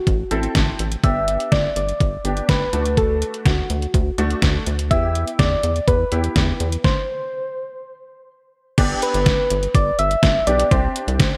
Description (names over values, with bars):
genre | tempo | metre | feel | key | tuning
synth-pop | 124 BPM | 4/4 | straight | G major | A4 = 441 Hz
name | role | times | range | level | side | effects
soft struck synth lead | melody | 0.0-11.4 s | F#4 to E5 | -25 LUFS | equal | chorus, delay
rubbery square bass | bass | 0.1-11.2 s | G1 to E2 | -25 LUFS | equal | none
detuned 8-bit digital drum machine | drums | 0.1-11.3 s | crash cymbal, hi-hat, kick drum, snare drum | -21 LUFS | equal | overdrive
clear grand piano | accompaniment | 0.3-11.4 s | A3 to A4 | -29 LUFS | equal | ensemble chorus
room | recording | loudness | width
moderate lush hall reverb, RT60 1.8 s, digital ambience | bright 1980s-style digital production | -19 LUFS | mono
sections
0.0-8.8 A section; 8.8-11.4 B section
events
stop 6.8-8.8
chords
0.0 Am; 1.0 G; 2.7 D; 4.9 Em7; 6.8 N.C.; 8.8 G; 10.7 Csus2